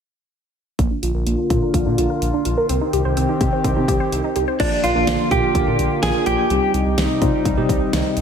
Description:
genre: synth-pop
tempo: 126 BPM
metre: 4/4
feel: straight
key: unclear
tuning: A4 = 439 Hz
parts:
  - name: chorused pulse-width pad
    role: sustained chords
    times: 0.8-8.2 s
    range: C3 to G4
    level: -22 LUFS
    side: equal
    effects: low-pass filter
  - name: resonant blip pluck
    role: arpeggios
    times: 0.8-4.6 s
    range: Bb3 to C5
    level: -24 LUFS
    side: right 1 dB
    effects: phaser, low-pass filter, ping-pong delay
  - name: smooth gliding synth bass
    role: bass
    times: 0.8-8.2 s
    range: Bb1 to C3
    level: -23 LUFS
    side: equal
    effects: none
  - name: pop drum kit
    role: drums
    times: 0.8-8.2 s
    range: crash cymbal, hi-hat, kick drum, snare drum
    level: -22 LUFS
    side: equal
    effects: none
  - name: direct-recorded clean electric guitar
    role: melody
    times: 4.6-6.7 s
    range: D4 to Ab4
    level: -20 LUFS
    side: right 1 dB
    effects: wide subtle chorus, ping-pong delay
  - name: tine electric piano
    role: accompaniment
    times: 4.6-8.2 s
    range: F3 to G4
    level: -24 LUFS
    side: left 1 dB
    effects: medium stereo tremolo
room: moderate lush hall reverb, RT60 1.9 s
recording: dreamy mix soaked in reverb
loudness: -16 LUFS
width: side -7 dB against mid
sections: 0.8-4.6 A section; 4.6-8.2 B section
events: filter sweep 0.8-4.6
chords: 0.8 Bb; 2.7 Cm; 4.6 Bb; 6.5 Cm

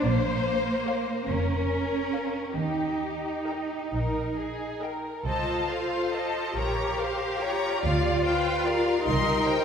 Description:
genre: classical, slow romantic movement for string orchestra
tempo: 44-50 BPM (dotted quarters)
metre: 6/8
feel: rubato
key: unclear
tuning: A4 = 442 Hz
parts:
  - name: rich chamber violin section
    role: second line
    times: 0.0-9.6 s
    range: G4 to D5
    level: -31 LUFS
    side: left 3 dB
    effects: none
  - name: rich studio double bass section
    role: bass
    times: 0.0-9.6 s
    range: F1 to Eb2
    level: -31 LUFS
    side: right 2 dB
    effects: none
  - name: rich symphonic cello section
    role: bass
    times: 0.0-9.6 s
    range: Bb3 to G4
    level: -29 LUFS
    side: right 1 dB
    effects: none
  - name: clear chamber violin section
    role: melody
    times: 0.9-9.6 s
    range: F5 to C6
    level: -33 LUFS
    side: left 4 dB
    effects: none
  - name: rich chamber viola section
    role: accompaniment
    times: 0.9-9.6 s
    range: F4 to F5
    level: -32 LUFS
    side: left 1 dB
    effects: none
room: wet scoring stage reverb, RT60 1.9 s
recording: heard from further back in the room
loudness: -25 LUFS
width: side -7 dB against mid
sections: 0.0-9.6 A section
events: none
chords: 0.0 Bbm; 2.6 Eb; 5.3 F7/C; 6.6 Bbm; 7.8 G7/D; 9.1 Cm

